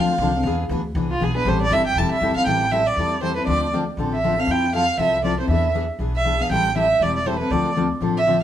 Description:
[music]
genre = acoustic string swing (jazz manouche)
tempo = 238 BPM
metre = 4/4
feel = swing 55% on 8ths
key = A minor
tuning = A4 = 441 Hz
[part]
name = warm violin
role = melody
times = 0.0-8.4 s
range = F4 to A5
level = -21 LUFS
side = right 2 dB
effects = none
[part]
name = picked steel-string acoustic guitar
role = accompaniment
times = 0.0-8.4 s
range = D3 to A4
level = -22 LUFS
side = left 3 dB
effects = none
[part]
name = upright bass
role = bass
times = 0.0-8.4 s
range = E1 to F2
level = -26 LUFS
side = equal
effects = none
[sound]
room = moderate stone room reverb, RT60 1.0 s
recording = band playing live in one room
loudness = -18 LUFS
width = side -10 dB against mid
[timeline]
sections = 0.0-2.5 A section; 2.5-8.4 B section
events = violin solo 0.0-2.5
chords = 0.5 E7b13; 1.5 Am7; 3.5 Dm7; 4.5 Fmaj7; 5.5 E7; 6.5 Am7; 7.5 Dm7

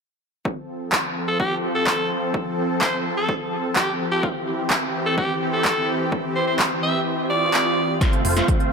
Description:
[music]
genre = EDM, festival progressive house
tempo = 127 BPM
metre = 4/4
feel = straight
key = F major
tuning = A4 = 437 Hz
[part]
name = supersaw pad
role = sustained chords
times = 0.5-8.7 s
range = C3 to A4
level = -25 LUFS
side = equal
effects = sidechain pumping, low-pass filter
[part]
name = electronic kick drum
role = drums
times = 0.5-8.6 s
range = none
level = -25 LUFS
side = equal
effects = high-pass filter on kick, high-pass filter on room
[part]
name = big-room dance drum kit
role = drums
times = 0.9-8.7 s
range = handclaps, hi-hat, snare drum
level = -24 LUFS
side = equal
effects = none
[part]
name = raspy alto saxophone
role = melody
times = 1.3-8.0 s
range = G4 to E5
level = -24 LUFS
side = equal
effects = analog delay
[part]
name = swell and riser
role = sound effects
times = 7.2-8.7 s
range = none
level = -29 LUFS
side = right 1 dB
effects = none
[part]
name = supersaw chords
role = riff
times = 8.0-8.7 s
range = A3 to F5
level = -23 LUFS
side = right 2 dB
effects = sidechain pumping, low-pass filter, analog delay
[part]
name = fat analog bass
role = bass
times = 8.2-8.4 s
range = F1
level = -23 LUFS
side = equal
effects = sidechain pumping
[sound]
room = wet plate reverb, RT60 1.6 s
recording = dreamy mix soaked in reverb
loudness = -19 LUFS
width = side -5 dB against mid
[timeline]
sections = 0.5-8.0 A section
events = kick drops out 7.1-8.0; swell 7.2-8.0; drum fill 8.0-8.7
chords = 0.5 F; 4.2 C; 8.0 F

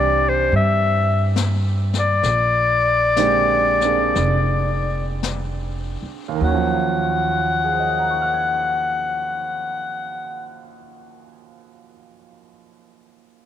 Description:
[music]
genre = jazz ballad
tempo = 48-74 BPM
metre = 4/4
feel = swing 68% on 8ths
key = unclear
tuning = A4 = 441 Hz
[part]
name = bright clarinet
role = melody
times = 0.0-10.7 s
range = C5 to Gb5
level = -19 LUFS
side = left 3 dB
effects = none
[part]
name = bright grand piano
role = accompaniment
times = 0.0-13.5 s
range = Eb2 to Ab6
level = -26 LUFS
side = right 11 dB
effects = none
[part]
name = upright bass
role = bass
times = 0.0-10.7 s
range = F1 to G2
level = -23 LUFS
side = right 1 dB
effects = none
[part]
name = jazz brush drum kit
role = drums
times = 0.5-7.4 s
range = brushed snare drum, hi-hat, snare drum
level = -31 LUFS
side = left 9 dB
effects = none
[sound]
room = light reverb, studio ambience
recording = 1960s-style stereo with parts hard left and right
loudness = -17 LUFS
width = side -10 dB against mid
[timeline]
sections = 0.0-6.4 A section; 6.4-11.3 B section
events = slowing down 0.0-6.4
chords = 0.0 Cadd9; 2.2 Bb13; 6.4 Ebm9

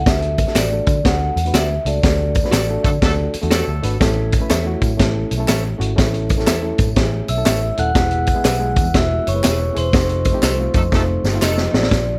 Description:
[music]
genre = uptempo 1960s-style soul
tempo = 122 BPM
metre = 4/4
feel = swing 64% on 8ths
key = A major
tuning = A4 = 440 Hz
[part]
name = vibraphone with soft mallets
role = melody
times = 0.0-3.3, 7.3-12.2 s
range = C5 to F#5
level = -25 LUFS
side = equal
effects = none
[part]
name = vintage muted picked electric bass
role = bass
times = 0.0-12.2 s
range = D#1 to D3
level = -23 LUFS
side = equal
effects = none
[part]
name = overdriven reed electric piano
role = accompaniment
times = 0.1-12.2 s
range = F3 to B4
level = -28 LUFS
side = equal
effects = none
[part]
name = vintage drum kit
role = drums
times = 0.1-12.1 s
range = hi-hat, kick drum, snare drum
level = -21 LUFS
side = equal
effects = none
[part]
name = tambourine and handclaps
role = percussion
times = 0.1-12.1 s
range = none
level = -33 LUFS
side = equal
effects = none
[part]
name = clean electric guitar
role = stabs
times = 0.6-11.6 s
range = F4 to E5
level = -26 LUFS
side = equal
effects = none
[part]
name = clear horn section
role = second line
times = 2.8-4.0, 10.7-11.9 s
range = F3 to A4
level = -30 LUFS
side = equal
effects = none
[part]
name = percussive tonewheel organ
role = sustained chords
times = 4.0-11.9 s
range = F3 to E4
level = -33 LUFS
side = equal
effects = none
[part]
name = glockenspiel with soft plastic mallets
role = second line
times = 7.3-11.4 s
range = C6 to F#6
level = -35 LUFS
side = equal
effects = none
[sound]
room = little or no reverb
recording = none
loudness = -17 LUFS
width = mono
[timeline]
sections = 0.0-11.9 A section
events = band accent 2.0-4.0, 9.9-11.9; drum fill 10.9-11.9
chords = 0.1 D; 4.0 A; 8.0 E; 9.9 F7

